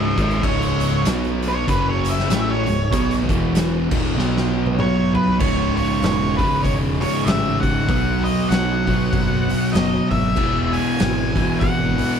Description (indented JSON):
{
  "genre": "stoner and doom metal",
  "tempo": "97 BPM",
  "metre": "4/4",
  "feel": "swing 59% on 8ths",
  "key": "C# minor",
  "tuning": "A4 = 440 Hz",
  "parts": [
    { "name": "octave-fuzz lead guitar", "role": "melody", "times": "0.0-12.2 s", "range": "B4 to G#5", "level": "-24 LUFS", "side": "equal", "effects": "distortion" },
    { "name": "string machine, violas", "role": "sustained chords", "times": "0.0-12.2 s", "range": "C#3 to F#5", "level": "-33 LUFS", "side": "left 1 dB", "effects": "none" },
    { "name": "distorted electric guitar", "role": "riff", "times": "0.0-12.2 s", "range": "C#2 to B3", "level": "-26 LUFS", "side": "equal", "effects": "distortion" },
    { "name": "thick fuzz guitar", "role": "riff", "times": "0.0-12.2 s", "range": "C#2 to B3", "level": "-24 LUFS", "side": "left 8 dB", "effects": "distortion" },
    { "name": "thick fuzz guitar", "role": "riff", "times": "0.0-12.2 s", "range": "C#2 to B3", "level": "-24 LUFS", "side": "right 11 dB", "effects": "distortion" },
    { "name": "overdriven picked electric bass", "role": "bass", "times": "0.0-12.0 s", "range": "C#1 to B1", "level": "-26 LUFS", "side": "equal", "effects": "none" },
    { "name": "oversized low-tuned drum kit", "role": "drums", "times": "0.2-12.1 s", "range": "crash cymbal, hi-hat, kick drum, snare drum, toms", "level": "-24 LUFS", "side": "equal", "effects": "none" }
  ],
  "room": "little or no reverb",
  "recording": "none",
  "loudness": "-17 LUFS",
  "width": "side -7 dB against mid",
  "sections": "0.0-5.4 A section; 5.4-12.2 B section",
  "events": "lead electric guitar solo 0.0-5.4; drum fill 4.2-5.4",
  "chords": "0.0 C#m; 1.1 B5; 1.7 F#5; 2.3 C#m; 3.2 E5; 3.9 C#5; 4.2 B5; 5.4 C#m; 7.9 B5; 10.4 E"
}